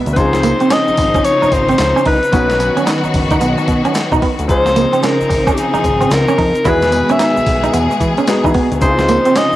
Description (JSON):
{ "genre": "R&B, new jack swing", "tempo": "111 BPM", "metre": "4/4", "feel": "swing 63% on 16ths", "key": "Db major", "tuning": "A4 = 440 Hz", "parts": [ { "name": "clear baby grand piano", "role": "accompaniment", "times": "0.0-9.6 s", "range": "D#3 to Cb5", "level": "-22 LUFS", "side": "left 3 dB", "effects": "cassette tape" }, { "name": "clear studio string section", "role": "sustained chords", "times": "0.0-9.6 s", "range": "B2 to E5", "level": "-19 LUFS", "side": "left 1 dB", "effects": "cassette tape" }, { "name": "clean electric guitar", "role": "riff", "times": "0.0-9.5 s", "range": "Bb3 to E4", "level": "-18 LUFS", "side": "right 3 dB", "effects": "analog chorus, cassette tape" }, { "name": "clear alto saxophone", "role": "melody", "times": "0.1-9.6 s", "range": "G4 to E5", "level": "-16 LUFS", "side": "left 1 dB", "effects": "tape echo" }, { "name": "fat analog bass", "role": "bass", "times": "0.1-9.6 s", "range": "Gb1 to E3", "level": "-19 LUFS", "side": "equal", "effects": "none" }, { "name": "crisp 8-bit digital drum machine", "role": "drums", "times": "0.1-9.5 s", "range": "handclaps, hi-hat, kick drum, snare drum, tambourine", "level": "-19 LUFS", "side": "equal", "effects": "cassette tape" }, { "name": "tube shaker", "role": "percussion", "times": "0.1-9.6 s", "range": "none", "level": "-38 LUFS", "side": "left 5 dB", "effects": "none" } ], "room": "moderate spring reverb, RT60 1.5 s, small room ambience", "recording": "home recording on cassette", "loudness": "-11 LUFS", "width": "side -14 dB against mid", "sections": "0.0-9.6 A section", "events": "none", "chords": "0.2 Dbmaj9; 2.3 Cb; 4.5 Dbmaj9; 6.7 Emaj7; 8.8 Dbmaj9" }